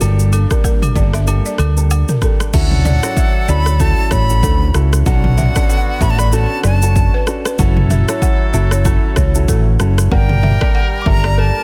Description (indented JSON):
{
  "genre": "afrobeats",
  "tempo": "95 BPM",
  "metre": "4/4",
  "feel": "swing 58% on 16ths",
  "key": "D major",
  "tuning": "A4 = 440 Hz",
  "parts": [
    { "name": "warm grand piano", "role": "accompaniment", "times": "0.0-11.6 s", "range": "Bb3 to Bb4", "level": "-27 LUFS", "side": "equal", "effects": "none" },
    { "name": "warm analog pad", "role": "sustained chords", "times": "0.0-2.5 s", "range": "G3 to A4", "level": "-31 LUFS", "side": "equal", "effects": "chorus" },
    { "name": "fingered electric bass", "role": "bass", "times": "0.0-11.5 s", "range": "F#1 to D2", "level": "-16 LUFS", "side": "equal", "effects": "none" },
    { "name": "deep house drum kit", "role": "drums", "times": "0.0-11.4 s", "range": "crash cymbal, kick drum, rim click, shaker, toms", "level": "-18 LUFS", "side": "equal", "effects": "soft clipping on snare" },
    { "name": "agogo bells and woodblock", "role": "percussion", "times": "0.0-2.1 s", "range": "none", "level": "-30 LUFS", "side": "equal", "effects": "none" },
    { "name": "balafon", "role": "riff", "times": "0.3-11.5 s", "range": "A4 to F#5", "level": "-28 LUFS", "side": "equal", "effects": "delay" },
    { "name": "bright silver concert flute", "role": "melody", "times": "2.5-11.6 s", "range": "F#5 to D6", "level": "-24 LUFS", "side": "equal", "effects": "delay" },
    { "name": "clear horn section", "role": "second line", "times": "2.5-11.6 s", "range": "D3 to Bb4", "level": "-28 LUFS", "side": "equal", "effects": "none" }
  ],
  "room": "studio reverb",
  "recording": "dense, heavily limited modern master",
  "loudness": "-14 LUFS",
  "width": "mono",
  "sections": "0.0-2.5 A section; 2.5-11.6 B section",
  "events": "hi-hats muted 10.1-11.6",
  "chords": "0.0 Gmadd9; 2.5 Dmaj7; 5.1 Bm7; 7.6 F#m7; 10.1 Gmadd9"
}